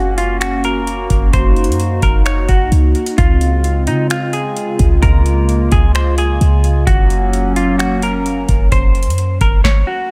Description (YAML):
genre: hip hop, atmospheric cloud-rap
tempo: 130 BPM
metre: 4/4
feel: half-time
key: unclear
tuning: A4 = 439 Hz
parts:
  - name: semi-hollow electric guitar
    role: melody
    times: 0.0-10.1 s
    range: Eb4 to Db5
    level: -23 LUFS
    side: equal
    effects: delay
  - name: hollow soft pad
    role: sustained chords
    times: 0.0-9.6 s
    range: Db3 to Gb4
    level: -22 LUFS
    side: equal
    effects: chorus, phaser, sidechain pumping
  - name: clean 808-style bass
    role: bass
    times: 0.0-9.6 s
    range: Gb1 to Db3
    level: -17 LUFS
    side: equal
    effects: none
  - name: booming analog drum machine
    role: drums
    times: 0.2-9.8 s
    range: finger snaps, hi-hat, kick drum, snare drum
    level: -18 LUFS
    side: equal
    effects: none
room: little or no reverb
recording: none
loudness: -14 LUFS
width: mono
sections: 0.0-10.1 A section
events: none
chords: 0.0 Gb; 3.2 Dbmaj7; 6.9 Gb